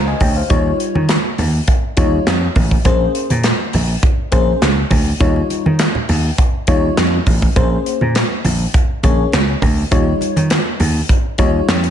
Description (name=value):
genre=early-eighties boogie funk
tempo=102 BPM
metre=4/4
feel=straight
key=unclear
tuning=A4 = 440 Hz
part: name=FM electric piano with soft pad layer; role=accompaniment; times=0.0-11.7 s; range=G3 to Ab5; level=-20 LUFS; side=left 4 dB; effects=chorus, slapback echo
part: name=vintage slap bass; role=bass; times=0.0-11.9 s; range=A1 to Eb3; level=-17 LUFS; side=right 1 dB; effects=none
part: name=modern studio drum kit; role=drums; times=0.2-11.9 s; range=handclaps, hi-hat, kick drum, snare drum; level=-16 LUFS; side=equal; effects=none
part: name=congas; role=percussion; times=0.2-11.5 s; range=none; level=-24 LUFS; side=right 3 dB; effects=none
room=light reverb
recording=nothing above 10.9 kHz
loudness=-13 LUFS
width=side -9 dB against mid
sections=0.0-11.9 A section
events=none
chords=0.0 Bbm9 (rootless); 0.5 Eb9; 2.9 Bbm9; 5.2 Eb9; 7.6 Bbm9; 9.9 Eb9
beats=| 0.50 1.09 1.68 2.27 | 2.86 3.44 4.03 4.62 | 5.21 5.80 6.38 6.97 | 7.56 8.15 8.74 9.33 | 9.91 10.50 11.09 11.68